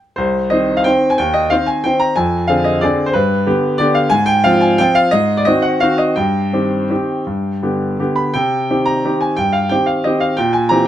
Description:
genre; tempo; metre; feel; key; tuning
classical, piano waltz; 157-194 BPM; 3/4; rubato; C minor; A4 = 440 Hz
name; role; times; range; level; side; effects
bright grand piano; solo; 0.2-10.9 s; C2 to B5; -13 LUFS; equal; none
room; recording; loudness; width
light reverb; none; -13 LUFS; side -11 dB against mid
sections
0.2-10.9 A section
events
none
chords
0.2 Cm; 1.2 Cm/Eb; 2.2 Dm7b5/F; 3.1 G; 4.1 Fm/Ab; 5.1 Ab7; 6.2 Cm/G; 7.3 G; 8.3 Cm; 10.4 C7/Bb

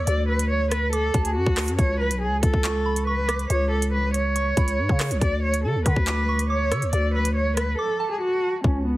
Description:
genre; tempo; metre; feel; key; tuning
hip hop, drill; 140 BPM; 4/4; half-time; unclear; A4 = 440 Hz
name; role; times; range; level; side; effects
dark cello; melody; 0.0-9.0 s; B3 to D5; -25 LUFS; right 1 dB; low-pass filter
soft synth bell; second line; 0.0-8.6 s; A5 to E6; -34 LUFS; right 2 dB; chorus, tape echo
growling 808-style bass; bass; 0.0-9.0 s; B1 to D3; -24 LUFS; equal; none
drill drum kit; drums; 0.1-8.7 s; handclaps, hi-hat, kick drum, rim click; -24 LUFS; equal; none
room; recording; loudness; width
little or no reverb; heavily compressed radio sound, multiband compression; -20 LUFS; side -17 dB against mid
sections
0.0-8.6 A section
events
break 7.8-8.6; hi-hats muted 8.6-9.0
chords
0.0 D; 1.8 C#5; 5.2 D5

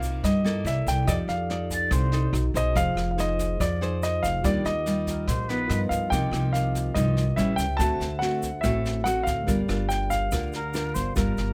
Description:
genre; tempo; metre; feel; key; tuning
bossa nova; 143 BPM; 4/4; straight; C minor; A4 = 440 Hz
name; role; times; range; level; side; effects
dark grand piano; melody; 0.0-11.5 s; D5 to A5; -31 LUFS; equal; none
nylon-string guitar; accompaniment; 0.0-11.5 s; G2 to D5; -31 LUFS; equal; none
tine electric piano; accompaniment; 0.0-11.5 s; Eb4 to D6; -40 LUFS; equal; none
upright bass; bass; 0.0-11.5 s; F1 to G2; -30 LUFS; equal; none
jazz brush drum kit; drums; 0.0-11.4 s; kick drum, rim click, snare drum; -34 LUFS; equal; none
egg shaker; percussion; 0.0-11.5 s; none; -45 LUFS; equal; none
concert flute; second line; 1.7-2.4, 5.1-5.8, 10.5-11.5 s; Bb4 to D5; -33 LUFS; equal; none
room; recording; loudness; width
little or no reverb; close, detailed microphones; -25 LUFS; mono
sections
0.0-11.5 A section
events
none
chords
0.0 Cm11; 0.6 C13; 1.1 F13; 2.3 B7; 2.8 Fm7; 4.4 Ebmaj9; 5.7 G7alt; 6.1 Cm11; 7.4 A7; 7.8 D7; 9.5 Gm7

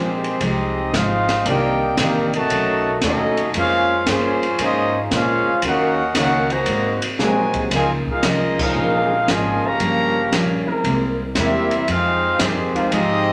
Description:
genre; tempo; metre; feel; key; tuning
jazz, big band swing; 115 BPM; 4/4; swing 69% on 8ths; F minor; A4 = 440 Hz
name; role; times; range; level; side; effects
mellow trumpet section; melody; 0.0-13.3 s; Ab3 to Bb5; -23 LUFS; equal; none
mellow trombone section; second line; 0.0-13.3 s; Bb2 to Ab4; -26 LUFS; equal; none
picked steel-string acoustic guitar; accompaniment; 0.0-13.3 s; G2 to C5; -27 LUFS; equal; none
upright bass; bass; 0.0-13.3 s; G1 to Bb2; -30 LUFS; equal; none
open jazz drum kit; drums; 0.2-13.1 s; crash cymbal, hi-hat, kick drum, ride cymbal, snare drum; -27 LUFS; equal; none
warm trombone section; sustained chords; 1.4-13.3 s; Eb3 to Bb4; -28 LUFS; equal; none
room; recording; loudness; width
wet club reverb, RT60 0.8 s; none; -19 LUFS; mono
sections
0.0-13.3 A section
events
band accent 8.5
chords
0.0 Fm9; 1.5 Cm9; 2.5 B9; 3.5 Bbm9; 5.6 Ebm7; 6.7 Ab9; 7.7 Db69; 9.8 Gm7b5; 10.8 C7b13; 11.9 Fm9

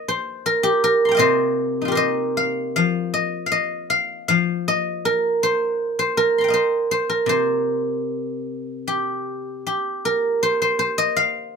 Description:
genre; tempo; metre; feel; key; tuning
chinese traditional, Chinese solo plucked strings; 79 BPM; 2/4; rubato; C yu mode; A4 = 440 Hz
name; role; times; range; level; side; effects
guzheng; solo; 0.0-11.6 s; C3 to C6; -19 LUFS; equal; none
room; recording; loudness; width
light reverb; minimal, uncompressed stereo recording; -18 LUFS; side -5 dB against mid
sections
0.0-8.9 A section; 8.9-11.6 B section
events
none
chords
none

